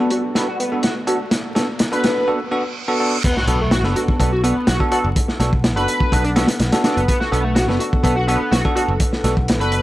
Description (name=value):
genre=breakbeat, breaks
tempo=125 BPM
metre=4/4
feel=straight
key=B minor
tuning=A4 = 440 Hz
part: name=dark analog pad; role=sustained chords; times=0.0-9.8 s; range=B3 to F#5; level=-29 LUFS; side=left 1 dB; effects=chorus, sidechain pumping
part: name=overdriven synth lead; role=riff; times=0.0-9.8 s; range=A3 to B4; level=-22 LUFS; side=equal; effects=distortion, ensemble chorus, tape echo
part: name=bell-like tine electric piano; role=stabs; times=0.0-9.8 s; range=B3 to A4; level=-22 LUFS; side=right 1 dB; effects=lush chorus, tape echo
part: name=riser, reverse cymbal and impact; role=sound effects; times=0.0-5.2 s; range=none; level=-29 LUFS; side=right 1 dB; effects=none
part: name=crunchy breakbeat drum kit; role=drums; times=0.1-9.8 s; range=crash cymbal, hi-hat, kick drum, snare drum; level=-19 LUFS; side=equal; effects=low-pass filter on kick, low-pass filter on hats, low-pass filter on cymbals, low-pass filter on snare, low-pass filter on room
part: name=modern bright picked electric bass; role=bass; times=3.5-9.8 s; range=F#1 to B1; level=-21 LUFS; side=equal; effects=none
room=light reverb, studio reverb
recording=dry, gritty hardware recording, vinyl crackle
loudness=-16 LUFS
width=side -16 dB against mid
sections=0.0-3.2 A section; 3.2-9.8 B section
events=build-up 0.0-3.2; drum fill 0.0-2.3; riser 0.0-2.3; filter sweep on drum 0.0-3.2; filter sweep on tine electric piano 0.0-3.2; reverse cymbal 2.3-3.2; drop 3.2-9.8; impact 3.2-5.2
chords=0.0 Bm7